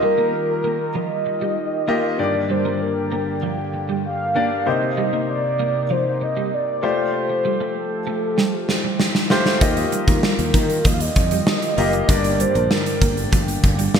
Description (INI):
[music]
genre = 1980s-style pop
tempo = 97 BPM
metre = 4/4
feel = straight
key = unclear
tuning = A4 = 440 Hz
[part]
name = mellow horn-like synth lead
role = melody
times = 0.0-14.0 s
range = A4 to F5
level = -23 LUFS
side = equal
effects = chorus
[part]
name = clear grand piano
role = accompaniment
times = 0.0-14.0 s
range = G2 to Eb5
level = -24 LUFS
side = left 2 dB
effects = lush chorus
[part]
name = sweeping resonant pad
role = sustained chords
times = 0.0-14.0 s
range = C3 to G4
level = -29 LUFS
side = equal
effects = chorus, phaser
[part]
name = twelve-string electric guitar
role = riff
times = 0.0-13.9 s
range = F3 to Bb3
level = -28 LUFS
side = right 6 dB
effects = ensemble chorus
[part]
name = gated 80s drum kit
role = drums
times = 8.4-14.0 s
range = hi-hat, kick drum, snare drum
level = -19 LUFS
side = equal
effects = gated reverb
[part]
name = sustaining fretless electric bass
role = bass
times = 9.6-14.0 s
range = F#1 to Eb3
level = -24 LUFS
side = equal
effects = none
[sound]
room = moderate lush hall reverb, RT60 2.1 s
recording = bright 1980s-style digital production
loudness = -18 LUFS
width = side -7 dB against mid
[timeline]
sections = 0.0-14.0 A section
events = drum fill 8.4-9.6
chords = 0.0 Ebadd9; 2.2 Gm; 4.7 Cm7; 6.8 Fadd9; 9.6 Ebadd9; 12.1 Gm